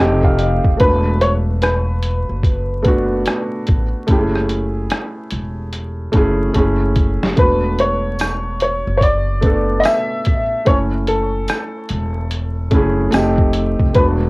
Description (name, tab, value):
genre	lo-fi hip hop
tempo	73 BPM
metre	4/4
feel	swing 63% on 16ths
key	unclear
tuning	A4 = 442 Hz
part	felt-muted upright piano	accompaniment	0.0-14.3 s	A3 to G#5	-20 LUFS	equal	cassette tape, low-pass filter
part	upright bass	bass	0.0-14.3 s	E1 to A1	-20 LUFS	equal	none
part	lo-fi sampler-style drum kit	drums	0.2-14.2 s	hi-hat, kick drum, rim click, snare drum	-17 LUFS	equal	cassette tape
part	warm upright piano	melody	0.8-14.0 s	A4 to E5	-19 LUFS	left 1 dB	low-pass filter
part	tambourine	percussion	8.2-13.4 s	none	-38 LUFS	left 2 dB	none
room	light reverb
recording	home recording on cassette, vinyl crackle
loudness	-14 LUFS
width	side -25 dB against mid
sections	0.0-7.4 A section; 7.4-14.3 A section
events	felt piano fill 0.0-0.8; drum fill 6.5-7.4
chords	0.0 F9; 0.8 E9sus4; 4.1 F#m7; 7.4 E9sus4; 10.7 F#m7; 13.1 F9